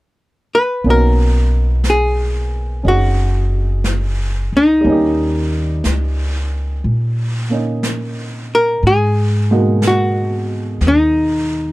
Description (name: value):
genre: jazz ballad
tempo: 60 BPM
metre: 4/4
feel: swing 67% on 8ths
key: B major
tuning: A4 = 441 Hz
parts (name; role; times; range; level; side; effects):
- archtop guitar, miked and amplified; melody; 0.5-11.7 s; D#4 to B4; -16 LUFS; left 1 dB; none
- warm upright piano; accompaniment; 0.8-11.7 s; B2 to G#4; -22 LUFS; right 2 dB; none
- upright bass; bass; 0.8-11.7 s; F#1 to A#2; -17 LUFS; equal; none
- vintage brush drum kit; drums; 0.8-11.7 s; brushed snare drum, hi-hat, snare drum; -28 LUFS; equal; none
room: little or no reverb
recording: none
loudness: -14 LUFS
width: side -19 dB against mid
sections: 0.8-11.7 A section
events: none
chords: 0.0 N.C.; 0.8 Bmaj9; 4.8 D#7; 8.8 G#m9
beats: | 0.85 1.85 2.85 3.85 | 4.85 5.84 6.84 7.83 | 8.82 9.81 10.80